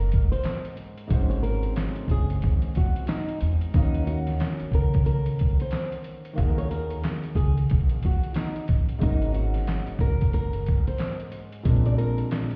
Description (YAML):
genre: hip hop, boom-bap hip-hop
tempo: 91 BPM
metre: 4/4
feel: swing 61% on 16ths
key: unclear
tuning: A4 = 441 Hz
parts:
  - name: flamenco guitar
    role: melody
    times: 0.0-12.3 s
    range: Eb4 to D5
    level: -36 LUFS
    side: equal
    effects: plate reverb, tape echo
  - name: warm concert grand piano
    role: accompaniment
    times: 0.0-12.6 s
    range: Ab2 to F5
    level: -34 LUFS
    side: equal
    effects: cassette tape, plate reverb
  - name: upright bass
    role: bass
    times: 0.0-12.2 s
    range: Gb1 to Fb2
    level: -28 LUFS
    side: equal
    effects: none
  - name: trip hop sampler-style drum kit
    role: drums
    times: 0.1-12.6 s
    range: handclaps, hi-hat, kick drum, snare drum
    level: -27 LUFS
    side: equal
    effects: none
room: light reverb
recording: heard muffled through a wall, stone room reverb, vinyl crackle, EQ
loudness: -25 LUFS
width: mono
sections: 0.0-12.6 A section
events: none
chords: 0.0 Ab7sus4; 3.7 Ebm7; 9.0 Ab7sus4; 11.7 Bb7